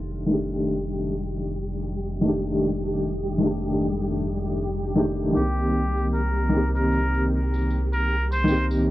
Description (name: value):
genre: trip hop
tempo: 77 BPM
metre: 4/4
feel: swing 58% on 16ths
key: unclear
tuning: A4 = 441 Hz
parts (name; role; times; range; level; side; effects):
- felt-muted upright piano; accompaniment; 0.0-8.9 s; Eb3 to G4; -24 LUFS; equal; tremolo, cassette tape, tape echo
- dark analog pad; sustained chords; 1.7-8.9 s; A4 to Eb6; -46 LUFS; equal; none
- round analog bass; bass; 0.0-8.9 s; F1 to C2; -27 LUFS; equal; tube saturation
- flickering grainy texture; texture; 0.1-8.9 s; G3 to G4; -32 LUFS; left 1 dB; built-in reverb, cassette tape
- trumpet with straight mute; melody; 5.4-8.7 s; G4 to C5; -28 LUFS; equal; tape echo
- tambourine; percussion; 5.4-8.8 s; none; -51 LUFS; left 2 dB; none
room: light reverb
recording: home recording on cassette, low-pass filter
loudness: -22 LUFS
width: side -16 dB against mid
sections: 0.0-8.9 A section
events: filter sweep 0.0-8.9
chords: 0.0 F13; 5.4 Cm7